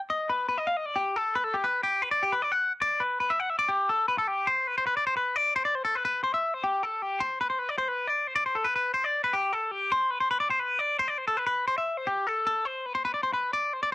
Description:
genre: rock.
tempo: 308 BPM (eighths).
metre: 7/8.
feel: straight.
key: G major.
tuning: A4 = 442 Hz.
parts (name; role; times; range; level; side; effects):
twangy electric guitar; solo; 0.1-13.9 s; G4 to F#5; -25 LUFS; left 1 dB; phaser.
room: moderate small room reverb, RT60 0.6 s.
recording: home recording on cassette.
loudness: -25 LUFS.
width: side -18 dB against mid.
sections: 0.0-4.3 A section; 4.3-13.9 B section.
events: none.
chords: none.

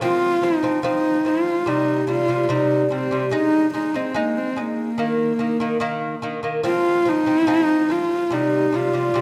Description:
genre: mongolian traditional, Mongolian folk.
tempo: 72 BPM.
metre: 4/4.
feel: straight.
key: F minor.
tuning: A4 = 438 Hz.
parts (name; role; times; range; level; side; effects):
warm horsehead fiddle; melody; 0.0-9.2 s; Bb3 to F4; -22 LUFS; equal; none.
lute; arpeggios; 0.0-9.2 s; C3 to Eb4; -25 LUFS; equal; none.
room: moderate recital hall reverb, RT60 1.6 s.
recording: none.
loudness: -21 LUFS.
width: mono.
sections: 0.0-9.2 A section.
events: none.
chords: 0.0 F5; 1.7 C5; 3.3 Ab5; 5.0 Eb5; 6.7 F5; 8.3 C5.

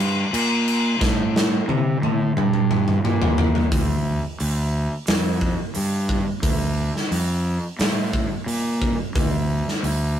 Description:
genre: stoner and doom metal.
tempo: 88 BPM.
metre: 4/4.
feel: straight.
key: D minor.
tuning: A4 = 443 Hz.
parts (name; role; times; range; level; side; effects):
fuzz fingered electric bass; bass; 0.0-10.2 s; D2 to C3; -22 LUFS; equal; overdrive.
big rock drum kit; drums; 0.0-10.0 s; crash cymbal, hi-hat, kick drum, snare drum, toms; -22 LUFS; equal; none.
room: light reverb.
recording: rough rehearsal-room recording, warm saturation.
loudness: -19 LUFS.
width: side -9 dB against mid.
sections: 0.0-3.7 A section; 3.7-10.2 B section.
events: drum fill 1.0-3.7.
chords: none.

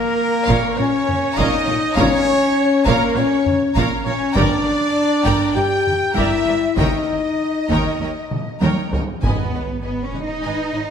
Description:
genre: cinematic, epic orchestral film score.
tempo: 100 BPM.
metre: 4/4.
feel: straight.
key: unclear.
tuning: A4 = 440 Hz.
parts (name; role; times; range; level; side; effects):
warm symphonic violin section; melody; 0.0-10.9 s; A#4 to G5; -29 LUFS; left 4 dB; none.
mellow hollow small flute group; second line; 0.0-8.9 s; A#4 to G5; -26 LUFS; left 4 dB; none.
dark French horn section; sustained chords; 0.0-10.9 s; A#3 to G4; -20 LUFS; left 2 dB; none.
warm trumpet; stabs; 0.0-8.9 s; A#4 to G5; -25 LUFS; right 2 dB; none.
rich symphonic violin section; second line; 0.5-10.8 s; B4 to A#5; -28 LUFS; left 2 dB; none.
rich symphonic viola section; accompaniment; 0.5-10.8 s; A#4 to D#5; -28 LUFS; right 1 dB; none.
warm symphonic cello section; bass; 0.5-10.9 s; D#2 to D#4; -25 LUFS; right 2 dB; none.
warm symphonic double bass section; bass; 0.5-10.8 s; G1 to D#2; -26 LUFS; right 5 dB; none.
taiko ensemble; drums; 0.5-10.4 s; none; -24 LUFS; equal; none.
timpani; percussion; 9.2-10.1 s; G#2; -30 LUFS; right 2 dB; none.
sub drop; sound effects; 9.3-10.9 s; none; -30 LUFS; right 1 dB; none.
room: wet scoring stage reverb, RT60 1.9 s.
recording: none.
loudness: -16 LUFS.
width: side -7 dB against mid.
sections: 0.0-9.2 A section; 9.2-10.9 B section.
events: drum fill 8.3-9.2; impact 9.2-10.9.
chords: 0.0 A#m; 4.4 Gm; 6.8 D#7; 9.2 G#m.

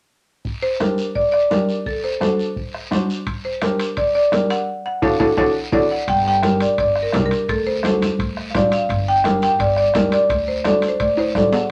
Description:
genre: latin, cumbia.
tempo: 170 BPM.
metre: 4/4.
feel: straight.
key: G harmonic minor.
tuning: A4 = 439 Hz.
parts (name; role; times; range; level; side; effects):
bombo; percussion; 0.4-11.5 s; none; -32 LUFS; equal; none.
guiro; percussion; 0.5-11.7 s; none; -37 LUFS; equal; none.
marimba with medium hard mallets; melody; 0.6-11.7 s; A4 to G5; -21 LUFS; equal; none.
dark upright piano; accompaniment; 0.8-11.6 s; D4 to C5; -25 LUFS; equal; none.
congas; percussion; 0.8-11.5 s; none; -26 LUFS; equal; none.
timbales; percussion; 3.3-11.6 s; none; -28 LUFS; equal; none.
upright bass; bass; 6.1-11.5 s; G1 to D2; -29 LUFS; equal; none.
room: moderate studio reverb, RT60 0.5 s.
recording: none.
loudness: -19 LUFS.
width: mono.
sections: 0.5-6.1 A section; 6.1-11.7 B section.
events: band accent 4.7-6.1; drum fill 5.2-6.1, 11.2-11.7.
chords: 0.5 Gm; 1.9 D7; 3.3 Gm; 4.7 D; 6.1 Gm; 7.5 D7; 8.9 Gm; 10.3 D.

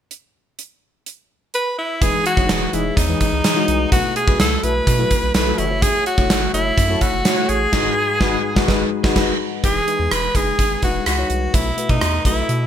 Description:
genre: 1980s-style pop.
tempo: 126 BPM.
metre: 4/4.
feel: straight.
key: E major.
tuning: A4 = 437 Hz.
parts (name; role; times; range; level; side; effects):
gated 80s drum kit; drums; 0.1-12.6 s; crash cymbal, hi-hat, kick drum, rim click, snare drum; -19 LUFS; right 1 dB; none.
bright alto saxophone; melody; 1.5-12.7 s; D#4 to B4; -20 LUFS; right 1 dB; digital delay.
FM electric piano; accompaniment; 2.0-12.7 s; G#2 to C#5; -24 LUFS; left 5 dB; chorus.
round analog bass; bass; 2.0-12.7 s; E1 to B2; -24 LUFS; equal; none.
mellow synth brass; stabs; 2.5-9.3 s; E3 to C#5; -28 LUFS; right 2 dB; chorus.
room: moderate plate reverb, RT60 1.3 s.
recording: bright 1980s-style digital production.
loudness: -16 LUFS.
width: side -9 dB against mid.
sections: 0.1-2.0 A section; 2.0-9.6 B section; 9.6-12.7 C section.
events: band accent 7.7-9.6.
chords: 0.1 N.C.; 2.0 Emaj7; 3.9 B7sus4; 5.6 F#m7; 7.7 G#m7; 9.6 Emaj7; 11.5 B7sus4.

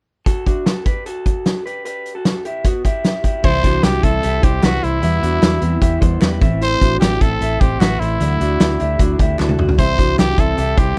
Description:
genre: jangly indie pop.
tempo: 151 BPM.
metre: 4/4.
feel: straight.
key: unclear.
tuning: A4 = 440 Hz.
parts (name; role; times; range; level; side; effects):
electric guitar through a small old amp; arpeggios; 0.3-11.0 s; A3 to C5; -26 LUFS; equal; none.
loose indie drum kit; drums; 0.3-10.9 s; crash cymbal, hi-hat, kick drum, snare drum, toms; -18 LUFS; equal; none.
growling trumpet; melody; 3.4-11.0 s; E4 to C5; -23 LUFS; equal; none.
fingerpicked steel-string acoustic guitar; accompaniment; 3.4-11.0 s; E2 to E4; -25 LUFS; equal; none.
vintage muted fingered electric bass; bass; 3.4-10.9 s; A1 to E2; -23 LUFS; equal; none.
group handclap; percussion; 3.8-10.3 s; none; -35 LUFS; equal; none.
room: little or no reverb.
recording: none.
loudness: -17 LUFS.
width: mono.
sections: 0.3-3.4 A section; 3.4-11.0 B section.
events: drum fill 9.4-9.8.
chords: 0.3 Bm7; 1.9 Emadd9; 3.4 C; 5.0 Em; 6.4 Am; 8.2 Dadd9; 9.8 C.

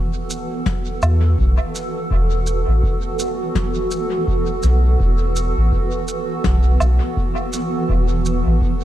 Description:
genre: ambient dub.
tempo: 83 BPM.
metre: 4/4.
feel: swing 60% on 16ths.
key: unclear.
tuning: A4 = 440 Hz.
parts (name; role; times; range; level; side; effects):
granular cloud pad; sustained chords; 0.0-8.8 s; E3 to A4; -22 LUFS; right 2 dB; built-in reverb.
shaker, snare drum and woodblock; drums; 0.3-8.4 s; none; -26 LUFS; left 1 dB; dub echo.
electronic kick drum; drums; 0.7-8.8 s; none; -22 LUFS; equal; none.
soft dub sub bass; bass; 1.0-8.6 s; E1 to E2; -16 LUFS; equal; none.
room: little or no reverb.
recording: echo-heavy mix.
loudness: -16 LUFS.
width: side -13 dB against mid.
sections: 0.0-8.8 A section.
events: none.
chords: 0.0 Esus4.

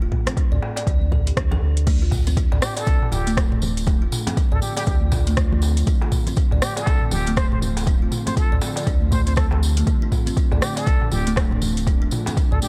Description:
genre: afro house.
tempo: 120 BPM.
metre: 4/4.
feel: swing 60% on 16ths.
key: D minor pentatonic.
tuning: A4 = 440 Hz.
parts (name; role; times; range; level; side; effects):
kalimba; arpeggios; 0.0-12.6 s; A3 to D5; -32 LUFS; equal; sidechain pumping, dub echo.
round analog bass; bass; 0.0-12.6 s; D1 to D2; -24 LUFS; equal; sidechain pumping.
afro-pop drum kit; drums; 0.1-12.5 s; crash cymbal, hi-hat, rim click, toms; -30 LUFS; equal; none.
electronic kick drum; drums; 0.1-12.5 s; none; -23 LUFS; equal; overdrive.
darbuka; percussion; 0.1-12.6 s; none; -34 LUFS; equal; none.
congas; percussion; 0.3-12.7 s; none; -34 LUFS; equal; none.
ethereal airy pad; sustained chords; 2.8-12.7 s; D3 to F4; -35 LUFS; equal; ensemble chorus, built-in reverb, sidechain pumping.
tambourine; percussion; 1.9-12.7 s; none; -37 LUFS; equal; none.
trumpet with plunger mute; melody; 2.6-12.7 s; G4 to C5; -33 LUFS; equal; dub echo.
room: small room ambience.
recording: dark, warm production.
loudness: -20 LUFS.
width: mono.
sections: 0.0-12.7 A section.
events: none.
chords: 0.0 Dm7.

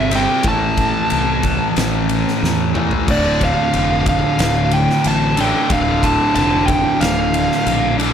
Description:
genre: stoner and doom metal.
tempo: 92 BPM.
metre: 4/4.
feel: straight.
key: D minor.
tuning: A4 = 440 Hz.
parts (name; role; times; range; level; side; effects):
fuzz lead guitar; melody; 0.0-8.0 s; D5 to A5; -19 LUFS; right 1 dB; distortion, slapback echo.
fuzz guitar; riff; 0.0-8.1 s; D2 to C4; -18 LUFS; equal; distortion.
fuzz fingered electric bass; bass; 0.0-8.1 s; D1 to E2; -22 LUFS; equal; overdrive, tube saturation.
oversized low-tuned drum kit; drums; 0.1-8.1 s; crash cymbal, kick drum, ride cymbal, snare drum, toms; -21 LUFS; left 1 dB; none.
room: light reverb, small room ambience.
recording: none.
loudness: -14 LUFS.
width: side -8 dB against mid.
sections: 0.0-8.1 A section.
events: drum fill 2.4-3.1.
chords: 0.5 Am; 3.1 Dm.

